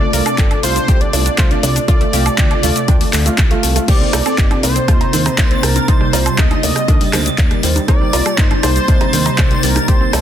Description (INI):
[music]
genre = progressive house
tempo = 120 BPM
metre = 4/4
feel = straight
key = C dorian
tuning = A4 = 440 Hz
[part]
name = wide unison lead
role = melody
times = 0.0-10.2 s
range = Bb4 to Eb5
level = -21 LUFS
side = equal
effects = sidechain pumping, ping-pong delay
[part]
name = shimmering ambient pad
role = sustained chords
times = 0.0-10.2 s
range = C3 to A4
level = -23 LUFS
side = right 2 dB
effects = chorus, built-in reverb, phaser, sidechain pumping
[part]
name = wide unison pluck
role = arpeggios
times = 0.0-10.2 s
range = G3 to Bb4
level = -23 LUFS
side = equal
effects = sidechain pumping, tape echo
[part]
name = felt-muted upright piano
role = stabs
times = 0.0-10.2 s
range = A3 to G5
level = -23 LUFS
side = right 3 dB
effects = sidechain pumping, tape echo
[part]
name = fat analog bass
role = bass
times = 0.0-10.2 s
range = G1 to Eb2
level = -19 LUFS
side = equal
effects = sidechain pumping
[part]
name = house drum kit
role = drums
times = 0.1-10.2 s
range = cabasa, crash cymbal, handclaps, hi-hat, woodblock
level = -19 LUFS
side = left 2 dB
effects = none
[part]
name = electronic kick drum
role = drums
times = 0.4-10.0 s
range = none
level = -14 LUFS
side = equal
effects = none
[part]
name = backwards swelling texture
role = texture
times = 4.7-10.2 s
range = A6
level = -27 LUFS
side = right 1 dB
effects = built-in reverb, sidechain pumping
[part]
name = electronic rim click, cowbell and congas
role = percussion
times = 4.1-10.2 s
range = none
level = -24 LUFS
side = right 4 dB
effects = soft clipping on snare, sidechain pumping on snare, sidechain pumping on perc
[sound]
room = digital ambience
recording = dense, heavily limited modern master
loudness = -11 LUFS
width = side -10 dB against mid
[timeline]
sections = 0.0-10.2 A section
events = none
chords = 0.0 Dm; 3.9 Cm7